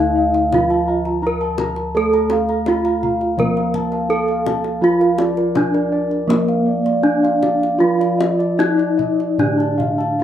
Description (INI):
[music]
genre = Javanese gamelan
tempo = 72-84 BPM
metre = 4/4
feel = straight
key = unclear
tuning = A4 = 440 Hz
[part]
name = gamelan-type bronze metallophone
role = melody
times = 0.0-10.2 s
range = Bb3 to Bb4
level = -18 LUFS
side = equal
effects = plate reverb
[part]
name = gamelan-type bronze metallophone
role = accompaniment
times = 0.0-10.2 s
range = D3 to Bb3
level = -25 LUFS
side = right 3 dB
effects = plate reverb
[part]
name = gamelan-type bossed gongs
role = arpeggios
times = 0.0-10.2 s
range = Bb4 to Bb5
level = -23 LUFS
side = left 3 dB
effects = plate reverb
[part]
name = gamelan-type bronze metallophone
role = arpeggios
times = 0.0-10.2 s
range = Bb4 to Bb5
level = -24 LUFS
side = right 3 dB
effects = plate reverb
[part]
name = gamelan-type bossed gongs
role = bass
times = 0.0-10.2 s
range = D2 to A4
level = -26 LUFS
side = left 2 dB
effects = none
[part]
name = kendang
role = percussion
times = 0.3-10.2 s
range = none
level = -27 LUFS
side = left 5 dB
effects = none
[sound]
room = wet studio reverb, RT60 0.6 s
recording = rough home demo mix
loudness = -15 LUFS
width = side -10 dB against mid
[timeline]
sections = 0.0-10.2 A section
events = none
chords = none